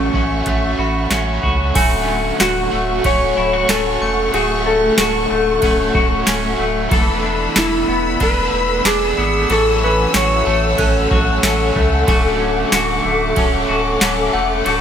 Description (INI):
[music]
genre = dream pop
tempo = 93 BPM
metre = 4/4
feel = straight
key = D lydian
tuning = A4 = 440 Hz
[part]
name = clean lap steel guitar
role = melody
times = 0.0-11.7 s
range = C#4 to C#5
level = -19 LUFS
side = equal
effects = wide subtle chorus, digital delay
[part]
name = overdriven electric guitar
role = accompaniment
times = 0.0-14.8 s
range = A2 to A4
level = -23 LUFS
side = right 4 dB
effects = tremolo, analog chorus
[part]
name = warm studio string section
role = sustained chords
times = 0.0-14.8 s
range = A3 to E6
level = -21 LUFS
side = left 3 dB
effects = none
[part]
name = semi-hollow electric guitar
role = arpeggios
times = 0.0-14.8 s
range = E3 to A4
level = -20 LUFS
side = left 2 dB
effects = lush chorus, digital delay
[part]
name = warm sub bass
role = bass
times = 0.0-14.8 s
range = D1 to C#2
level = -23 LUFS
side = equal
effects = none
[part]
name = glassy synth bell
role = texture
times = 0.0-14.8 s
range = F#5 to F#6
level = -29 LUFS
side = right 1 dB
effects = chorus, phaser, digital delay
[part]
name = booming analog drum machine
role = drums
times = 0.1-14.8 s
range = crash cymbal, hi-hat, kick drum, ride cymbal, snare drum, tambourine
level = -19 LUFS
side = equal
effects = gated reverb
[sound]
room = wet plate reverb, RT60 2.5 s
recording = bright 1980s-style digital production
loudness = -14 LUFS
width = side -8 dB against mid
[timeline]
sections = 0.0-1.8 A section; 1.8-14.8 B section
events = none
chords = 0.0 A6; 1.8 Dmaj7; 6.9 E7sus4; 9.5 A6; 12.1 Dmaj7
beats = 0.47 1.11 | 1.76 2.40 3.05 3.69 | 4.34 4.98 5.63 6.27 | 6.92 7.56 8.21 8.85 | 9.50 10.14 10.79 11.43 | 12.08 12.72 13.37 14.01 | 14.66